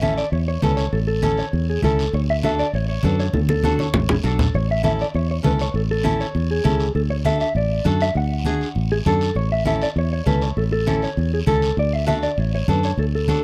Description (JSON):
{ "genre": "latin, cumbia", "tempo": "199 BPM", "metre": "4/4", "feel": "straight", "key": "A major", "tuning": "A4 = 439 Hz", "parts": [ { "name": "mellow electric guitar", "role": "melody", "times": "0.0-13.4 s", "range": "G#4 to F#5", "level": "-27 LUFS", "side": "equal", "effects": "spring reverb" }, { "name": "flamenco guitar", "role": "accompaniment", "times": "0.0-13.4 s", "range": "C#4 to A4", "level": "-26 LUFS", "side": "equal", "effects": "none" }, { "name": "fingered electric bass", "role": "bass", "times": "0.0-13.4 s", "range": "A1 to F#2", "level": "-24 LUFS", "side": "equal", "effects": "none" }, { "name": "congas", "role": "percussion", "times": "0.0-13.4 s", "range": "none", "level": "-26 LUFS", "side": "equal", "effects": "none" }, { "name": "guiro", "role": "percussion", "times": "0.0-13.4 s", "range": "none", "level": "-39 LUFS", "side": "equal", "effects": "none" } ], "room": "light reverb", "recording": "dry, close 1970s-style studio recording", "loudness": "-20 LUFS", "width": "mono", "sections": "0.0-13.4 A section", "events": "drum fill 3.3-4.5", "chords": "0.0 A; 2.1 D; 4.5 A; 7.0 D; 9.4 A; 11.8 D" }